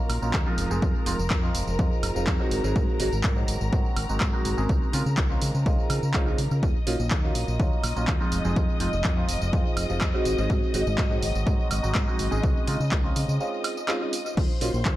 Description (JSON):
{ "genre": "filtered disco house", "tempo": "124 BPM", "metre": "4/4", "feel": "straight", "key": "unclear", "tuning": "A4 = 440 Hz", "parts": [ { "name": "clear concert grand piano", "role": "accompaniment", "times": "0.0-14.7 s", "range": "F3 to Ab4", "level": "-29 LUFS", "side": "right 1 dB", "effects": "phaser, sidechain pumping, low-pass filter, analog delay" }, { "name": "rich studio string section", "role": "sustained chords", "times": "0.0-15.0 s", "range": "Bb4 to Eb6", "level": "-35 LUFS", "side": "left 1 dB", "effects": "sidechain pumping, low-pass filter" }, { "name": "fingered electric bass", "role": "bass", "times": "0.1-15.0 s", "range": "F1 to Db3", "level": "-28 LUFS", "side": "equal", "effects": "tube saturation, sidechain pumping, low-pass filter" }, { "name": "punchy analog drum machine", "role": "drums", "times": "0.1-15.0 s", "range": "crash cymbal, handclaps, hi-hat, tambourine, woodblock", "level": "-32 LUFS", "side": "right 1 dB", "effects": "sidechain pumping on hats, sidechain pumping on perc, sidechain pumping on cymbals, analog delay" }, { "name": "electronic kick drum", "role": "drums", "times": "0.3-15.0 s", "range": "none", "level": "-26 LUFS", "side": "equal", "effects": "none" } ], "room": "little or no reverb", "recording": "echo-heavy mix", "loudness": "-22 LUFS", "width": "side -15 dB against mid", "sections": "0.0-15.0 A section", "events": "filter sweep 0.0-15.0; break 13.4-14.4", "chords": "0.0 Ebm9; 0.6 Fm7; 2.5 Ab7; 4.7 Dbmaj9; 6.6 Ebm9; 8.3 Fm7; 10.3 Ab7; 12.4 Dbmaj9; 14.4 Ebm" }